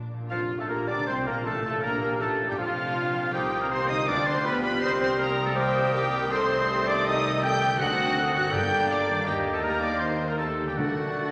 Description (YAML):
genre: classical, dramatic, fast romantic movement for symphony orchestra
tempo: 161 BPM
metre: 4/4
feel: rubato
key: Bb major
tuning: A4 = 440 Hz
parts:
  - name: warm symphonic violin section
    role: melody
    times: 0.0-11.3 s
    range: F5 to G6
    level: -37 LUFS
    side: equal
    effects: none
  - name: warm symphonic violin section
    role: second line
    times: 0.0-11.3 s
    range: G3 to Bb4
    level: -43 LUFS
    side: equal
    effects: none
  - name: warm symphonic viola section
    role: accompaniment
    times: 0.0-11.3 s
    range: D4 to G5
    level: -39 LUFS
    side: equal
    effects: none
  - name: concert harp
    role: arpeggios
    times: 0.0-11.3 s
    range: G2 to D5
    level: -40 LUFS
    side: equal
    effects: none
  - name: warm symphonic cello section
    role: bass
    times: 0.0-11.3 s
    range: F3 to G4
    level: -37 LUFS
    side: equal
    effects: none
  - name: warm symphonic double bass section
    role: bass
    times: 0.0-11.3 s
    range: F1 to G2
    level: -39 LUFS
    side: equal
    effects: none
  - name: clear clarinet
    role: second line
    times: 0.3-11.3 s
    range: F4 to Eb5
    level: -37 LUFS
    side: equal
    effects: none
  - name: mellow concert flute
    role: second line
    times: 0.3-11.3 s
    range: F5 to A6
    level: -38 LUFS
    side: equal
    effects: none
  - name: warm oboe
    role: second line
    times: 0.3-11.3 s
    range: F4 to G5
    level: -33 LUFS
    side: equal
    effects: none
  - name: clear bassoon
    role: accompaniment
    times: 0.3-11.3 s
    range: F3 to D4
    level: -39 LUFS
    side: equal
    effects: none
  - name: dark trombone section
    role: sustained chords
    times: 0.3-11.3 s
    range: F2 to D4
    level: -40 LUFS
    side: equal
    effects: none
  - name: mellow French horn section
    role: sustained chords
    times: 0.3-11.3 s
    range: D4 to C5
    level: -35 LUFS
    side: equal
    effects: none
  - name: mellow trumpet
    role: stabs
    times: 0.3-11.3 s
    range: F4 to G5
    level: -34 LUFS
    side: equal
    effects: none
  - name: mellow tuba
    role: bass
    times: 0.3-11.3 s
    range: F1 to Eb2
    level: -41 LUFS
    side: equal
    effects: none
  - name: timpani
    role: percussion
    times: 4.1-4.6, 7.8-11.3 s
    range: G2 to D3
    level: -38 LUFS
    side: equal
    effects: none
room: wet scoring stage reverb, RT60 1.8 s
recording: none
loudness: -26 LUFS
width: mono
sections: 0.3-11.3 A section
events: none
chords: 0.3 Bb/F; 1.1 F7; 1.8 Bb; 3.3 Cm7; 4.1 G7/D; 4.8 Cm7; 6.3 Am7b5/C; 7.8 D7b9; 8.5 Gm; 9.3 Eb; 10.8 D